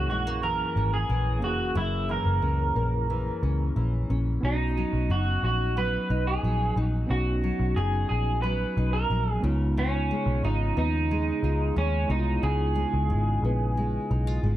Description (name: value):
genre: indie pop, bedroom pop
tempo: 90 BPM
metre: 4/4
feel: straight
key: unclear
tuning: A4 = 441 Hz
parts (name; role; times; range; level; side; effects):
- electric guitar through a small old amp; melody; 0.0-14.4 s; C#4 to B4; -30 LUFS; right 2 dB; lush chorus, digital delay
- nylon-string guitar; accompaniment; 0.0-14.6 s; F#2 to E#4; -32 LUFS; left 3 dB; analog chorus, warbly pitch drift
- tine electric piano; accompaniment; 0.0-14.6 s; G#3 to G#4; -34 LUFS; right 1 dB; medium tremolo, cassette tape
- vintage muted picked electric bass; bass; 0.0-14.6 s; E#1 to D#2; -26 LUFS; equal; none
room: digital ambience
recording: none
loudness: -24 LUFS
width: side -13 dB against mid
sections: 0.0-14.6 A section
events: none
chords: 0.0 F#7; 4.4 Bmaj7; 9.4 C#7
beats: 0.43 1.09 | 1.76 2.43 3.10 3.76 | 4.43 5.10 5.77 6.43 | 7.10 7.77 8.44 9.11 | 9.77 10.44 11.11 11.78 | 12.44 13.11 13.78 14.44